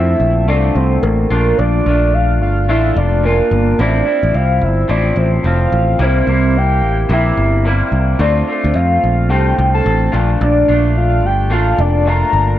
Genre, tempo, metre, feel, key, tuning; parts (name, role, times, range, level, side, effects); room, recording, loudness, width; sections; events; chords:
indie pop; 109 BPM; 4/4; swing 60% on 16ths; A4 = 440 Hz
soft octave-layered synth lead; melody; 0.0-12.6 s; Bb4 to Bb5; -17 LUFS; right 1 dB; phaser, lush chorus
electric guitar through a small old amp; accompaniment; 0.0-12.6 s; A2 to F4; -19 LUFS; left 2 dB; lush chorus, warbly pitch drift
picked electric bass; bass; 0.0-12.6 s; F1 to F2; -14 LUFS; equal
light reverb; -12 LUFS; side -12 dB against mid
0.0-12.6 A section
0.0 Dm7; 1.3 Bbmaj7; 3.8 Fmaj7; 6.0 C7; 8.2 Dm7; 10.1 Bbmaj7